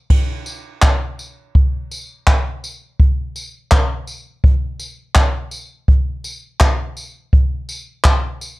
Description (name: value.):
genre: pop.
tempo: 83 BPM.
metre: 4/4.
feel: straight.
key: none.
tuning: none.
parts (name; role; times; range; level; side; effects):
jazz brush drum kit; drums; 0.1-8.6 s; crash cymbal, handclaps, kick drum, tambourine; -14 LUFS; equal; none.
room: little or no reverb.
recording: dark, warm production.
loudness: -15 LUFS.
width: side -21 dB against mid.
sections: 0.1-8.6 A section.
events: none.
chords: none.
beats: | 0.10 0.82 1.55 2.27 | 2.99 3.71 4.44 5.16 | 5.88 6.61 7.33 8.05.